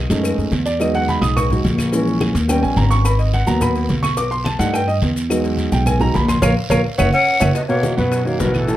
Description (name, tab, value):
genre	Afro-Cuban jazz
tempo	214 BPM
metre	4/4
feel	straight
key	unclear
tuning	A4 = 440 Hz
part	warm upright piano	accompaniment	0.0-8.8 s	A2 to D#6	-19 LUFS	right 1 dB	none
part	upright bass	bass	0.0-8.8 s	F#1 to G2	-18 LUFS	equal	none
part	congas	percussion	0.1-8.8 s	none	-25 LUFS	left 1 dB	none
part	cowbell and bongos	percussion	0.1-8.8 s	none	-28 LUFS	left 3 dB	none
part	guiro	percussion	0.1-8.8 s	none	-33 LUFS	right 5 dB	none
part	maracas	percussion	0.1-8.8 s	none	-34 LUFS	left 7 dB	none
part	claves	percussion	0.3-8.7 s	none	-32 LUFS	left 4 dB	none
part	jazz flute	melody	7.1-8.8 s	A4 to F#5	-20 LUFS	left 2 dB	none
part	breathy tenor saxophone	second line	7.1-8.8 s	E3 to C#4	-24 LUFS	right 2 dB	none
room	light reverb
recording	dark, warm production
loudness	-15 LUFS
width	side -14 dB against mid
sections	0.0-7.6 A section; 7.6-8.8 B section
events	upright piano solo 0.0-7.6; drum fill 6.4-7.6; band accent 6.4-7.6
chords	0.0 B13 (rootless); 0.8 Emaj7; 1.9 A#m7b5; 2.5 D#7b13; 3.1 G#m9; 4.2 Baug7; 5.3 Emaj7; 6.4 A#m; 7.0 F#5; 7.6 Bmaj9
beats	0.24 0.53 | 0.81 1.09 1.37 1.65 | 1.93 2.21 2.49 2.77 | 3.05 3.33 3.62 3.90 | 4.18 4.46 4.74 5.02 | 5.30 5.58 5.86 6.14 | 6.43 6.71 6.99 7.27 | 7.55 7.84 8.12 8.40 | 8.68